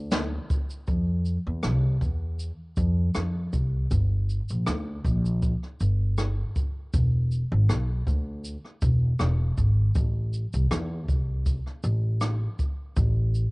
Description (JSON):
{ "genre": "acoustic pop", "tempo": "79 BPM", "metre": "4/4", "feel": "swing 55% on 16ths", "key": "unclear", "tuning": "A4 = 439 Hz", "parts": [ { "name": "upright bass", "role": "bass", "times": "0.0-13.4 s", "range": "E1 to F2", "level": "-24 LUFS", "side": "equal", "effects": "none" }, { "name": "jazz brush drum kit", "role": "drums", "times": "0.1-13.5 s", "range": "kick drum, rim click, shaker, snare drum", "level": "-28 LUFS", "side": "equal", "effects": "cassette tape" } ], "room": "little or no reverb", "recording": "home recording on cassette, nothing above 10.6 kHz", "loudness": "-23 LUFS", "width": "side -26 dB against mid", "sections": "0.9-13.0 A section", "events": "none", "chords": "none" }